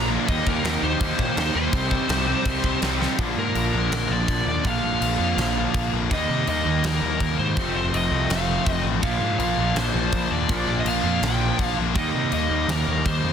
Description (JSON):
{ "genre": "punk rock", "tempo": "164 BPM", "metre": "4/4", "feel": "straight", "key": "unclear", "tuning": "A4 = 440 Hz", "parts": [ { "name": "smooth overdriven lead guitar", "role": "melody", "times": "0.0-13.3 s", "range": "Bb4 to G5", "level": "-27 LUFS", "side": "equal", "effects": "ping-pong delay" }, { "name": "distorted electric guitar", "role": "riff", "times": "0.0-13.3 s", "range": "F2 to Bb4", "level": "-27 LUFS", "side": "left 13 dB", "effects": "overdrive" }, { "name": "overdriven semi-hollow guitar", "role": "riff", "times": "0.0-13.3 s", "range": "F2 to Eb4", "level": "-28 LUFS", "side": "right 11 dB", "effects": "none" }, { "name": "fuzz picked electric bass", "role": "bass", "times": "0.0-13.3 s", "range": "F1 to C3", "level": "-27 LUFS", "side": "equal", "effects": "overdrive" }, { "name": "big rock drum kit", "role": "drums", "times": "0.3-13.1 s", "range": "crash cymbal, kick drum, snare drum", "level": "-27 LUFS", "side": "equal", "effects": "soft clipping on kick, soft clipping on snare" } ], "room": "little or no reverb", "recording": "dense, heavily limited modern master", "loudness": "-20 LUFS", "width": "side -8 dB against mid", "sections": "0.0-3.2 A section; 3.2-13.3 B section", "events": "drum fill 3.0; half time 3.2-13.3", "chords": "0.3 Eb; 1.7 Cm; 3.2 Bb; 6.1 Eb; 7.6 F; 9.0 Bb; 12.0 Eb" }